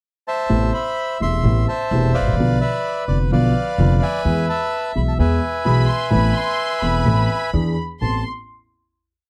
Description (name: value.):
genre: tango.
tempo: 128 BPM.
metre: 4/4.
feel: rubato.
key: A harmonic minor.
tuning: A4 = 440 Hz.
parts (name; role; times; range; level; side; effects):
bandoneon; melody; 0.3-8.2 s; B4 to C6; -24 LUFS; equal; none.
dark concert grand piano; accompaniment; 0.5-8.2 s; E1 to A4; -22 LUFS; equal; none.
upright bass; bass; 0.5-8.2 s; E1 to E2; -23 LUFS; equal; none.
warm studio violin section; second line; 5.7-8.2 s; B5 to C6; -27 LUFS; equal; none.
room: light reverb.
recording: dry, close 1970s-style studio recording.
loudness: -19 LUFS.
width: mono.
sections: 0.0-0.5 pickup bar; 0.5-8.0 A section; 8.0-9.3 final chord.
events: none.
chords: 0.0 C6; 0.5 Amadd9; 2.4 Bdim; 4.3 E; 6.1 Amadd9; 7.5 E7; 8.0 Amadd9.